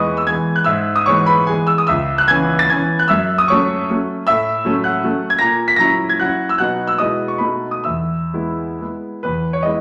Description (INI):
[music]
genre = classical, romantic triple-time dance for piano with dotted rhythms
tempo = 121-168 BPM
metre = 3/4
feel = rubato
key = E major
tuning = A4 = 440 Hz
[part]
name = clear concert grand piano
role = solo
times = 0.0-9.8 s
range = C#2 to B6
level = -17 LUFS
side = equal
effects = none
[sound]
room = wet large studio reverb, RT60 0.9 s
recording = none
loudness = -17 LUFS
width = mono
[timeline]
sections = 0.0-9.2 A section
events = none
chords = 0.0 E; 0.7 E/G#; 1.9 C#m7; 3.1 F#m7; 4.3 F#m/A; 5.4 F#7/A#; 6.6 B; 7.0 E/B; 7.4 B7; 7.8 E